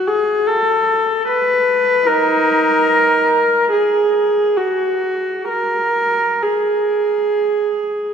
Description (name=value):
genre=classical, free, expressive piece for unaccompanied viola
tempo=62-77 BPM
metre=4/4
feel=rubato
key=unclear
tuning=A4 = 441 Hz
part: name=rich viola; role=solo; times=0.0-8.1 s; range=D#4 to B4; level=-14 LUFS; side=equal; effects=none
room=wet church reverb, RT60 3.6 s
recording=heard from further back in the room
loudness=-14 LUFS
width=side -7 dB against mid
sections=0.0-8.1 A section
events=none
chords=none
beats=0.47 1.27 | 2.08 2.89 3.71 4.58 | 5.49 6.44 7.41